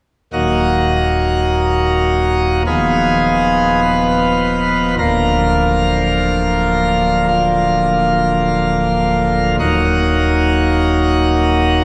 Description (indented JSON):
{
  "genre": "classical, chorale-style piece for pipe organ",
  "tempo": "52 BPM",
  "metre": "4/4",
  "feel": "straight",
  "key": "Eb minor",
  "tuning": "A4 = 440 Hz",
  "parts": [
    { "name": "pipe organ, plenum", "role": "solo", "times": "0.3-11.8 s", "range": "D1 to Cb5", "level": "-15 LUFS", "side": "equal", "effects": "none" }
  ],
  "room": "wet church reverb, RT60 3.5 s",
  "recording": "dark, warm production",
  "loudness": "-15 LUFS",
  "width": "mono",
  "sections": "0.3-11.8 A section",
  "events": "none",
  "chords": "0.3 Ebm; 2.7 Fm7b5/Eb; 5.0 Bb/D; 9.6 Ebm",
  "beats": "| 0.34 1.51 2.67 3.83 | 4.98 6.13 7.28 8.44 | 9.59 10.73"
}